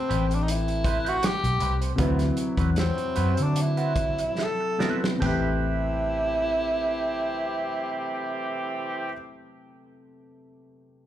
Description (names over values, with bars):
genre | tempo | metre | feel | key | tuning
lush 1970s-style soul | 70-81 BPM | 4/4 | swing 54% on 16ths | A dorian | A4 = 440 Hz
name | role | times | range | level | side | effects
breathy tenor saxophone | melody | 0.0-9.2 s | C4 to A4 | -28 LUFS | right 1 dB | slapback echo
warm concert grand piano | accompaniment | 0.0-11.1 s | C3 to B4 | -32 LUFS | left 1 dB | tube saturation, slapback echo
electric guitar at the edge of break-up | riff | 0.1-9.2 s | C4 to C5 | -35 LUFS | right 6 dB | wah, slapback echo
vintage muted fingered electric bass | bass | 0.1-9.1 s | A1 to D3 | -26 LUFS | equal | none
warm soul drum kit | drums | 0.1-5.4 s | hi-hat, kick drum, snare drum, splash cymbal, toms | -30 LUFS | equal | none
clear horn section | stabs | 5.2-9.1 s | E3 to G4 | -32 LUFS | right 1 dB | slapback echo
room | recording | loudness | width
small room reverb | live gig heard through the venue's PA, club reverb | -23 LUFS | side -11 dB against mid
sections
0.0-5.2 A section; 5.2-8.7 B section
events
slowing down 0.0-5.2; drum fill 4.4-5.2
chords
0.0 Am9; 2.0 D13; 5.2 Am9